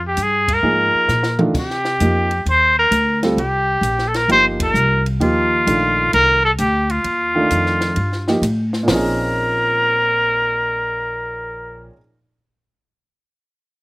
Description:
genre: modal jazz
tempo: 131 BPM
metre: 4/4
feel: swing 67% on 8ths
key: Bb dorian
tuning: A4 = 441 Hz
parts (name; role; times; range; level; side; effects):
- upright bass; bass; 0.0-11.9 s; G1 to C3; -22 LUFS; equal; none
- clear trumpet; melody; 0.1-11.9 s; F4 to C5; -16 LUFS; equal; none
- compact cocktail drum kit; drums; 0.2-9.0 s; crash cymbal, hi-hat, kick drum, ride cymbal, snare drum, toms; -24 LUFS; equal; none
- warm upright piano; accompaniment; 0.6-12.0 s; Bb2 to A4; -21 LUFS; right 1 dB; none
room: little or no reverb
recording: recorded outdoors, with no room sound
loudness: -14 LUFS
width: side -23 dB against mid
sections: 0.0-8.9 A section; 8.9-12.6 B section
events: band accent 0.4, 4.5; drum fill 1.1-1.5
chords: 0.0 Bb7sus4; 1.5 Cm11; 8.9 Bbm11

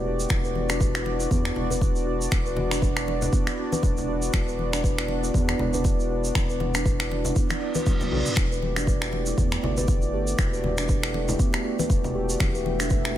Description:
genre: afro house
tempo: 119 BPM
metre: 4/4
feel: swing 57% on 16ths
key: unclear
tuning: A4 = 440 Hz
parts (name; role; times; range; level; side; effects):
- warm analog pad; sustained chords; 0.0-13.2 s; A3 to E5; -30 LUFS; equal; chorus, sidechain pumping
- kalimba; arpeggios; 0.0-13.1 s; B3 to B4; -30 LUFS; equal; sidechain pumping, ping-pong delay
- round analog bass; bass; 0.0-13.2 s; E1 to E2; -30 LUFS; equal; sidechain pumping
- tube shaker; percussion; 0.2-13.1 s; none; -36 LUFS; right 3 dB; none
- deep house drum kit; drums; 0.3-13.1 s; finger snaps, toms; -31 LUFS; equal; none
- electronic kick drum; drums; 0.3-13.0 s; none; -24 LUFS; equal; none
- congas; percussion; 0.3-12.9 s; none; -33 LUFS; left 3 dB; none
- reverse cymbal; sound effects; 7.6-8.4 s; none; -34 LUFS; right 1 dB; none
room: light reverb, digital ambience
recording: none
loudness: -22 LUFS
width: side -12 dB against mid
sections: 0.0-13.2 A section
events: reverse cymbal 7.6-8.4; drum fill 7.9-8.4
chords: 0.3 Bm/E; 8.4 Em11

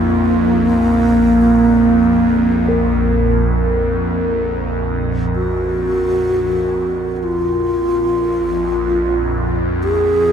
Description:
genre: world meditative, free-time meditation music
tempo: free time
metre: none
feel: none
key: unclear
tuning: A4 = 437 Hz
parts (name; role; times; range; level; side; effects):
- breathy bass flute; melody; 0.0-10.3 s; Bb3 to Ab4; -15 LUFS; equal; shimmer reverb, diffuse ambient delay
- evolving wavetable pad; drone; 0.0-10.3 s; Bb1 to F2; -18 LUFS; right 1 dB; phaser, built-in reverb
- quartz singing bowl; texture; 0.0-10.3 s; F4 to Bb4; -26 LUFS; right 1 dB; shimmer reverb
room: wet huge ambient reverb, RT60 8.4 s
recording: dark, warm production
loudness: -14 LUFS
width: side -8 dB against mid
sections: 0.0-10.3 A section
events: none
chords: none

